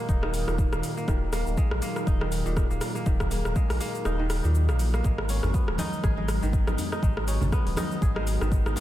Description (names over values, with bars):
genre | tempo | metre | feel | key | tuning
afro house | 121 BPM | 4/4 | swing 57% on 16ths | G# minor | A4 = 441 Hz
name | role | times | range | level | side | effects
warm analog pad | sustained chords | 0.0-8.8 s | A#2 to G#4 | -34 LUFS | equal | chorus, sidechain pumping
kora | arpeggios | 0.0-8.8 s | A#2 to G#4 | -34 LUFS | right 1 dB | sidechain pumping, tape echo
warm sub bass | bass | 0.1-8.7 s | D#1 to D#2 | -27 LUFS | equal | tube saturation, sidechain pumping
deep house drum kit | drums | 0.1-8.8 s | hi-hat, rim click, shaker | -33 LUFS | equal | overdrive
electronic kick drum | drums | 0.1-8.6 s | none | -25 LUFS | equal | overdrive
congas | percussion | 5.0-7.9 s | none | -36 LUFS | right 2 dB | none
djembe | percussion | 5.4-8.8 s | none | -37 LUFS | left 1 dB | none
room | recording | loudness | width
digital ambience | none | -24 LUFS | side -14 dB against mid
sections
0.0-8.8 A section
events
kick drops out 4.1-5.0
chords
0.0 D#m; 5.0 G#m7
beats
0.09 0.58 | 1.08 1.57 2.07 2.56 | 3.06 3.56 4.05 4.55 | 5.04 5.54 6.04 6.53 | 7.03 7.52 8.02 8.52